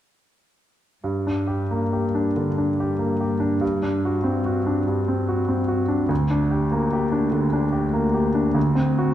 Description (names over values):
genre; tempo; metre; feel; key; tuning
classical, romantic movement for piano and orchestra; 96 BPM; 4/4; rubato; G minor; A4 = 438 Hz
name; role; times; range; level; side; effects
bright grand piano; melody; 1.0-9.1 s; D2 to G4; -20 LUFS; equal; none
dark chamber cello section; bass; 1.0-9.1 s; D2 to G2; -28 LUFS; equal; none
room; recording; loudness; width
wet concert hall reverb, RT60 1.8 s; minimal, uncompressed stereo recording; -20 LUFS; side -11 dB against mid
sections
1.0-9.1 A section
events
none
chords
1.0 Gm; 6.1 Gm/D